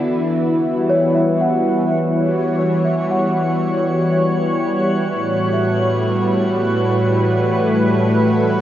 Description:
ambient; 71 BPM; 3/4; straight; E dorian; A4 = 439 Hz
warm analog pad; sustained chords; 0.0-8.6 s; A2 to C#5; -16 LUFS; equal; chorus
celesta; arpeggios; 0.0-8.6 s; C#5 to F#5; -23 LUFS; equal; tape echo
bowed-like drone; drone; 0.0-8.6 s; E3 to E4; -30 LUFS; left 2 dB; built-in reverb
drifting glass-harmonics texture; texture; 0.0-8.6 s; F#4 to F#5; -25 LUFS; right 1 dB; chorus, built-in reverb
wet lush hall reverb, RT60 2.9 s; worn, warbling old tape, cassette tape, warbly pitch drift; -15 LUFS; side -12 dB against mid
0.0-8.6 A section
fade-in on synth drone 0.0-8.6; fade-in on synth texture 0.0-8.6; fade-out on celesta 0.0-8.6
0.0 Em69; 5.1 A7

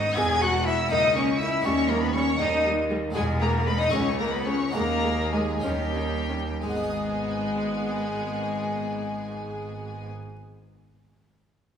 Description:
classical, baroque-style concerto movement with solo episodes; 58-81 BPM (dotted quarters); 6/8; straight; G# minor; A4 = 440 Hz
rich cello; melody; 0.0-10.1 s; G3 to G#4; -27 LUFS; left 2 dB
rich chamber violin section; melody; 0.0-10.1 s; G5 to G#6; -33 LUFS; left 1 dB
clear symphonic violin section; second line; 0.0-10.1 s; G4 to G#5; -32 LUFS; left 2 dB
harpsichord; accompaniment; 0.0-10.4 s; C#2 to D#5; -37 LUFS; left 1 dB
clear chamber cello section; bass; 0.0-10.1 s; C#2 to G#2; -33 LUFS; right 2 dB
clear chamber double bass section; bass; 0.0-10.1 s; E1 to D#2; -31 LUFS; right 3 dB
rich studio viola section; accompaniment; 0.2-10.1 s; G3 to C#4; -35 LUFS; right 1 dB
wet recital hall reverb, RT60 1.7 s; small room reverb; -23 LUFS; side -8 dB against mid
0.0-6.6 A section; 6.6-10.7 B section
slowing down 2.4-6.6
0.2 E; 0.9 A#dim/C#; 1.7 D#; 3.2 E; 3.9 C#m; 4.8 G#m/D#; 5.6 D#7; 6.6 G#m

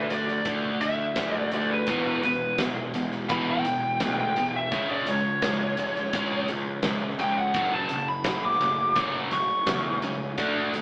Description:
quiet-loud alternative rock; 85 BPM; 4/4; straight; A4 = 441 Hz
lead guitar through a small cranked amp; melody; 0.0-10.7 s; B4 to D6; -26 LUFS; equal; overdrive
semi-hollow electric guitar; arpeggios; 0.0-10.8 s; E2 to D4; -38 LUFS; equal
scooped high-gain guitar; riff; 0.0-10.8 s; E2 to D4; -35 LUFS; equal; distortion
fuzz picked electric bass; bass; 0.0-10.8 s; E1 to E2; -31 LUFS; equal; overdrive
huge arena drum kit; drums; 0.1-10.8 s; hi-hat, kick drum, snare drum; -32 LUFS; equal
biting overdriven guitar; riff; 1.9-10.8 s; E2 to D4; -31 LUFS; equal
moderate studio reverb, RT60 0.8 s; band playing live in one room, AM radio sound; -23 LUFS; side -31 dB against mid
0.0-10.8 A section
lead electric guitar solo 0.0-10.8
0.0 D5; 1.9 E; 4.7 C#; 7.6 F#m

